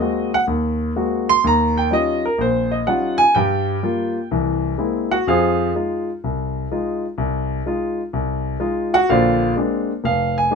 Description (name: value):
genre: solo jazz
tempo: 125 BPM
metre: 4/4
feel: swing 68% on 8ths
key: unclear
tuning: A4 = 439 Hz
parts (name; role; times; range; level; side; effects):
- warm grand piano; solo; 0.0-10.6 s; F1 to C6; -17 LUFS; equal; none
room: moderate small room ambience, RT60 0.5 s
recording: minimal, uncompressed stereo recording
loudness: -17 LUFS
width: side -5 dB against mid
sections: 0.0-10.6 A section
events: grand piano solo 0.0-10.6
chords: 0.0 Ab9; 1.4 Eb9; 3.3 Gm7; 4.3 Caug7; 5.3 Fm7; 9.1 Bb9